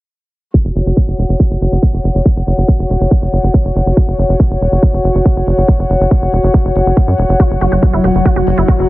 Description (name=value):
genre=psychedelic trance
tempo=140 BPM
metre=4/4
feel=straight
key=unclear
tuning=A4 = 441 Hz
part: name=electronic hi-hat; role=drums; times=0.5-8.8 s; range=none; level=-52 LUFS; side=right 1 dB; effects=none
part: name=electronic kick drum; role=drums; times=0.5-8.8 s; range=none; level=-10 LUFS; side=equal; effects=none
part: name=dark chamber string section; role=texture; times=0.5-8.9 s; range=F#4 to F#5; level=-18 LUFS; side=left 2 dB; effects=sidechain pumping
part: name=tight sequencer bass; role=bass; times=0.6-8.9 s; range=E1 to F#2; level=-13 LUFS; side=equal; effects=none
part: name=evolving wavetable pad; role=sustained chords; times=7.6-8.9 s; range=F#3 to F#4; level=-16 LUFS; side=left 2 dB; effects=phaser, built-in reverb, sidechain pumping
part: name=wide unison pluck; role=riff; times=7.4-8.7 s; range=E4 to F#4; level=-19 LUFS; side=moving between left 5 dB and right 3 dB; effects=auto-pan, sidechain pumping, ping-pong delay
room=digital ambience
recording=heavily compressed radio sound, multiband compression, low-pass filter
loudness=-10 LUFS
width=side -18 dB against mid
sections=0.5-8.9 A section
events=filter sweep 0.5-8.9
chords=0.5 F#5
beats=| 0.54 0.97 1.40 1.83 | 2.25 2.68 3.11 3.54 | 3.97 4.40 4.83 5.25 | 5.68 6.11 6.54 6.97 | 7.40 7.83 8.26 8.68